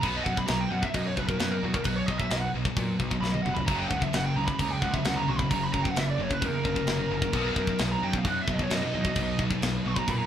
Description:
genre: heavy metal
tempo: 132 BPM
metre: 4/4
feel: straight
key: unclear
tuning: A4 = 440 Hz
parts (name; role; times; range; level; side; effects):
- bluesy overdriven lead guitar; melody; 0.0-10.2 s; F#4 to C#6; -31 LUFS; right 2 dB; distortion
- high-gain distorted guitar; riff; 0.0-10.3 s; F#2 to B3; -32 LUFS; left 6 dB; distortion
- high-gain distorted guitar; riff; 0.0-10.3 s; F#2 to B3; -33 LUFS; right 6 dB; distortion
- fuzz picked electric bass; bass; 0.0-10.2 s; E#1 to A#2; -33 LUFS; equal; overdrive
- tight metal drum kit; drums; 0.0-10.2 s; crash cymbal, kick drum, snare drum, toms; -30 LUFS; equal; none
- sludgy distorted guitar; riff; 3.7-10.3 s; F#2 to D#4; -37 LUFS; equal; none
room: moderate studio ambience, RT60 0.5 s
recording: band playing live in one room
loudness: -25 LUFS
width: side -10 dB against mid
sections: 0.0-10.3 A section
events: lead electric guitar solo 0.0-10.3; drum fill 3.2-3.7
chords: 0.0 B5; 3.7 F#; 7.3 B

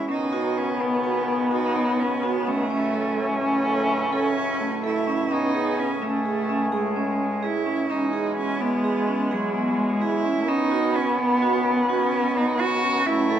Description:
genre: contemporary instrumental, chamber music in an uneven meter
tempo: 254 BPM (eighths)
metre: 11/8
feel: straight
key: unclear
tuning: A4 = 439 Hz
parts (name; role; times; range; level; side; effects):
- clear cello; melody; 0.0-13.4 s; F#3 to F#4; -26 LUFS; right 3 dB; none
- dark viola; second line; 0.0-13.4 s; G#3 to C#4; -26 LUFS; equal; none
- hand-pumped harmonium; sustained chords; 0.0-13.4 s; C#2 to G#4; -29 LUFS; left 1 dB; none
- vibraphone with medium mallets; arpeggios; 0.1-13.4 s; B3 to A4; -27 LUFS; right 1 dB; none
room: light reverb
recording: none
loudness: -21 LUFS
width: side -10 dB against mid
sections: 0.0-13.4 A section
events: none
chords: 0.1 Badd9/C#; 2.7 F#m7/C#; 5.3 Amaj7/C#; 7.9 C#m7; 10.5 Badd9/C#

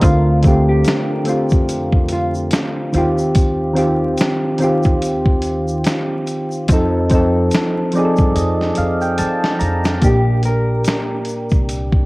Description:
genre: lo-fi hip hop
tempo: 72 BPM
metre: 4/4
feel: swing 56% on 16ths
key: Bb major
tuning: A4 = 440 Hz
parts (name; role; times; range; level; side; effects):
- mellow electric guitar; melody; 0.0-2.3, 10.0-11.7 s; F4 to Bb4; -24 LUFS; equal; none
- soft electric-piano-like synth keys; accompaniment; 0.0-12.1 s; Bb2 to Bb5; -17 LUFS; equal; chorus, cassette tape
- upright bass; bass; 0.0-12.1 s; Bb1 to F3; -20 LUFS; equal; none
- dusty soul sampler-style drum kit; drums; 0.0-12.1 s; finger snaps, hi-hat, kick drum, snare drum; -17 LUFS; equal; none
- egg shaker; percussion; 0.0-11.9 s; none; -37 LUFS; left 2 dB; none
room: light reverb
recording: home recording on cassette, vinyl crackle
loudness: -14 LUFS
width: side -22 dB against mid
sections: 0.0-10.0 A section; 10.0-12.1 B section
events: synth keys fill 7.5-10.0; drum fill 9.2-10.0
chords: 0.0 Dm7; 2.9 Eb69; 6.7 F7; 10.0 Bb6

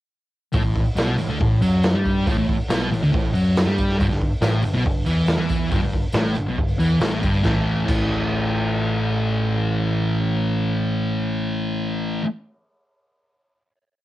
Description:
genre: garage rock duo or trio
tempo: 138 BPM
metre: 4/4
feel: straight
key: unclear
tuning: A4 = 439 Hz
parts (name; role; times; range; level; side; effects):
- thick fuzz guitar; riff; 0.5-12.3 s; G2 to A3; -21 LUFS; equal; distortion, cassette tape
- picked electric bass; bass; 0.5-12.2 s; G1 to G2; -25 LUFS; equal; overdrive
- raw garage drum kit; drums; 0.5-8.0 s; crash cymbal, hi-hat, kick drum, snare drum; -24 LUFS; equal; cassette tape
- tambourine; percussion; 0.5-8.0 s; none; -45 LUFS; right 2 dB; none
room: light reverb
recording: home recording on cassette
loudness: -19 LUFS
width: side -15 dB against mid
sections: 0.5-7.4 riff; 7.4-10.9 final chord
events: none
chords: 0.5 A7sus2; 4.0 G69; 7.4 A5

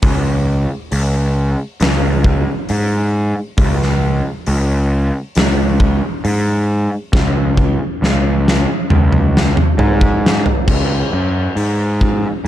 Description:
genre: stoner and doom metal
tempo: 68 BPM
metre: 4/4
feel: straight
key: unclear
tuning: A4 = 438 Hz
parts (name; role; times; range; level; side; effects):
- fuzz picked electric bass; bass; 0.0-12.5 s; C#2 to G#2; -15 LUFS; equal; overdrive
- big rock drum kit; drums; 0.0-12.2 s; crash cymbal, hi-hat, kick drum, snare drum, toms; -16 LUFS; equal; none
room: little or no reverb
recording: dark, warm production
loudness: -13 LUFS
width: side -12 dB against mid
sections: 0.0-10.7 A section; 10.7-12.5 B section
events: drum fill 7.1-10.7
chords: none

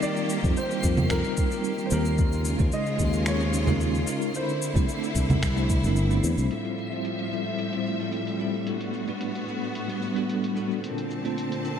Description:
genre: sunset chillout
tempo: 111 BPM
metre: 4/4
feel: straight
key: F lydian from 6.5 s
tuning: A4 = 440 Hz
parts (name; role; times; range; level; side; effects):
- warm grand piano; melody; 0.0-5.9 s; Bb4 to Eb5; -34 LUFS; equal; ping-pong delay, shimmer reverb
- bell-like tine electric piano; accompaniment; 0.0-11.8 s; G3 to C5; -29 LUFS; moving between left 4 dB and right 4 dB; medium stereo tremolo, auto-pan, low-pass filter, ping-pong delay, shimmer reverb
- bright studio string section; sustained chords; 0.0-11.8 s; A2 to A5; -31 LUFS; equal; low-pass filter, shimmer reverb
- dusty soul sampler-style drum kit; drums; 0.0-11.8 s; congas, finger snaps, hi-hat, shaker; -30 LUFS; right 2 dB; overdrive, low-pass filter on perc, low-pass filter on snare, low-pass filter on hats
- twinkling granular texture; texture; 0.0-6.5 s; C7; -41 LUFS; right 3 dB; built-in reverb, shimmer reverb
- sustaining fretless electric bass; bass; 0.4-6.5 s; G1 to F2; -25 LUFS; equal; wide subtle chorus
- electronic kick drum; drums; 0.4-5.8 s; none; -26 LUFS; equal; none
room: moderate lush hall reverb, RT60 1.7 s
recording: dreamy mix soaked in reverb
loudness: -24 LUFS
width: side -8 dB against mid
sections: 0.0-6.5 A section; 6.5-11.8 B section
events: filter sweep on tine electric piano 6.5-11.8; filter sweep on string section 6.5-11.8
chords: 0.0 F9sus4; 2.2 Eb9sus4; 4.3 C13; 6.5 Fmaj9; 8.7 Gmaj9; 10.8 Bbmaj9

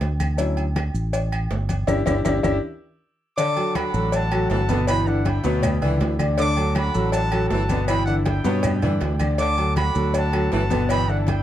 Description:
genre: latin, salsa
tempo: 160 BPM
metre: 4/4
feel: straight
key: D major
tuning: A4 = 440 Hz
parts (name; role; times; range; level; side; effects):
- fingered electric bass; bass; 0.0-11.4 s; G1 to G2; -23 LUFS; equal; none
- congas; percussion; 0.0-11.4 s; none; -28 LUFS; left 2 dB; none
- cowbell; percussion; 0.0-11.4 s; none; -30 LUFS; left 3 dB; none
- maracas; percussion; 0.0-11.4 s; none; -41 LUFS; right 6 dB; none
- timbales and agogo bells; percussion; 0.0-11.4 s; none; -32 LUFS; right 5 dB; none
- claves; percussion; 0.2-11.1 s; none; -37 LUFS; left 2 dB; none
- clear baby grand piano; accompaniment; 0.4-11.4 s; B2 to D5; -24 LUFS; left 2 dB; none
- bright trumpet section; melody; 3.4-11.4 s; D5 to D6; -27 LUFS; right 1 dB; tape echo
- clear saxophone section; second line; 3.4-11.2 s; D3 to F#3; -29 LUFS; equal; none
room: light reverb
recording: dark, warm production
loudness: -19 LUFS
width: side -12 dB against mid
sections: 0.0-3.4 A section; 3.4-11.4 B section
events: grand piano solo 0.0-3.4; band accent 1.9-3.4; drum fill 2.3-3.4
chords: 0.4 Dmaj7; 1.9 G5; 3.4 D; 4.9 G6; 6.4 D; 7.9 G6; 9.4 D; 10.9 G6

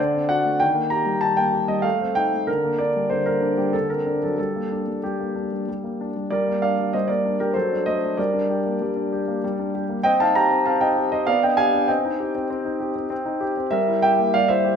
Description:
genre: classical-period piano sonatina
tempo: 96 BPM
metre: 3/4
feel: straight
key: G minor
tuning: A4 = 440 Hz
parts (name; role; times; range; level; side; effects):
- warm concert grand piano; solo; 0.0-14.8 s; D3 to Bb5; -19 LUFS; equal; none
room: wet recital hall reverb, RT60 1.7 s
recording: minimal, uncompressed stereo recording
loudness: -19 LUFS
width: side -7 dB against mid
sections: 0.0-6.3 A section; 6.3-14.8 A section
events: none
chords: 0.0 D7; 0.6 Eb; 1.9 Am7b5; 2.5 Gm/D; 3.7 D7; 4.4 Gm; 7.6 D7/F#; 8.2 Gm; 10.0 Cm; 11.3 G7/B; 11.9 Cm; 13.7 Edim/G

